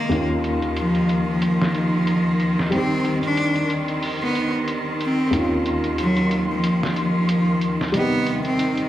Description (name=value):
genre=trip hop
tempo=92 BPM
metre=4/4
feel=swing 56% on 16ths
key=unclear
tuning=A4 = 440 Hz
part: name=clear cello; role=melody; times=0.0-8.9 s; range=F3 to D4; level=-21 LUFS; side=equal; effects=tape echo
part: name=warm upright piano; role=accompaniment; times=0.0-8.9 s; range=Eb2 to G4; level=-25 LUFS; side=left 1 dB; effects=harmonic tremolo, low-pass filter
part: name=bright symphonic string section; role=sustained chords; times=0.0-8.9 s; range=Eb3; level=-27 LUFS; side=right 1 dB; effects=none
part: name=flickering grainy texture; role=texture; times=0.0-8.9 s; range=C6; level=-33 LUFS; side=equal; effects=built-in reverb
part: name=trip hop sampler-style drum kit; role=drums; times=0.1-8.9 s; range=hi-hat, snare drum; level=-30 LUFS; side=equal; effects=low-pass filter on hats, small room ambience, low-pass filter on snare, low-pass filter on kick
room=light reverb, small room ambience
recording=none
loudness=-19 LUFS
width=side -13 dB against mid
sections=0.0-8.9 A section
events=none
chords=0.1 Eb5; 2.7 Cm; 5.3 Eb5; 7.9 Cm